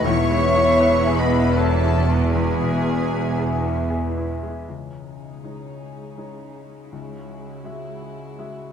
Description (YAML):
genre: cinematic, emotional film score for orchestra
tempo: 79 BPM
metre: 3/4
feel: uneven beats, rubato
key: unclear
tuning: A4 = 440 Hz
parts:
  - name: dark studio violin section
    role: melody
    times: 0.0-8.7 s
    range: F#4 to C#6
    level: -31 LUFS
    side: left 3 dB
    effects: none
  - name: mellow cor anglais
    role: second line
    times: 0.0-3.9 s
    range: G#4 to C#5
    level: -27 LUFS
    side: equal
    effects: none
  - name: mellow hollow silver concert flute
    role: second line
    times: 0.0-3.9 s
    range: B4 to E5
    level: -28 LUFS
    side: left 2 dB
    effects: none
  - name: warm symphonic violin section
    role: second line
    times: 0.0-8.7 s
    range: D#4 to C#5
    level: -27 LUFS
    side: equal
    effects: none
  - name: clear baby grand piano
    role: accompaniment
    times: 0.0-8.7 s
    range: C#2 to E5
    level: -31 LUFS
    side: left 1 dB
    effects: none
  - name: dark symphonic viola section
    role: accompaniment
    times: 0.0-8.7 s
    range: G#3 to E4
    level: -28 LUFS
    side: left 2 dB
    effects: none
  - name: mellow French horn section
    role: sustained chords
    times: 0.0-4.3 s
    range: B3 to E4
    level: -29 LUFS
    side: left 3 dB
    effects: none
  - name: concert harp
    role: arpeggios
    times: 0.0-8.7 s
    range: C#3 to B5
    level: -31 LUFS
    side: left 9 dB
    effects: none
  - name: dark symphonic double bass section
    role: bass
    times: 0.0-4.4 s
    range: E1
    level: -25 LUFS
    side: right 3 dB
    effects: none
  - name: rich symphonic cello section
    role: bass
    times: 0.0-8.7 s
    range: E2 to C#3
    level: -26 LUFS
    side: right 3 dB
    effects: none
room: moderate scoring stage reverb, RT60 1.6 s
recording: none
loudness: -17 LUFS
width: side -8 dB against mid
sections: 0.0-4.7 A section; 4.7-8.7 B section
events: none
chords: 0.1 E; 4.7 C#sus2; 6.9 Eadd9/C#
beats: | 0.05 0.81 1.57 | 2.35 3.13 3.90 | 4.68 5.43 6.18 | 6.91 7.65 8.38